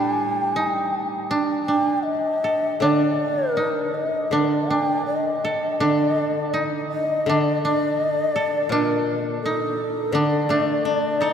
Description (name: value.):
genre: japanese traditional, Japanese chamber music.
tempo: 77-86 BPM.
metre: 4/4.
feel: rubato.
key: D miyako bushi.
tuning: A4 = 444 Hz.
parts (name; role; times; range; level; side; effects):
breathy mellow long shakuhachi; melody; 0.0-11.3 s; A4 to G5; -23 LUFS; left 1 dB; none.
koto; second line; 0.0-11.3 s; D4 to A4; -24 LUFS; right 3 dB; none.
koto; accompaniment; 0.0-11.3 s; A2 to Eb4; -27 LUFS; left 3 dB; none.
room: wet cathedral reverb, RT60 5.6 s.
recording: in a vast, echoing space.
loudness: -20 LUFS.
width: side -8 dB against mid.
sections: 0.0-11.3 A section.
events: none.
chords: none.